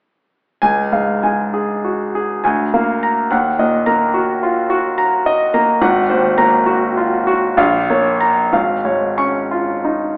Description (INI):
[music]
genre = classical, romantic character piece for solo piano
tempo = 60-72 BPM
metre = 3/4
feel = rubato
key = Db major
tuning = A4 = 439 Hz
[part]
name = clear concert grand piano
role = solo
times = 0.6-10.2 s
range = Ab1 to Db6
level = -13 LUFS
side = equal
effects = none
[sound]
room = wet recital hall reverb, RT60 1.6 s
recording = AM radio sound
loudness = -13 LUFS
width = side -39 dB against mid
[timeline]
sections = 0.6-10.2 A section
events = none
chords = 0.6 Db; 2.4 Bb7/D; 3.3 Ebm; 5.8 Ab9; 7.6 Bbm; 8.5 Db/Ab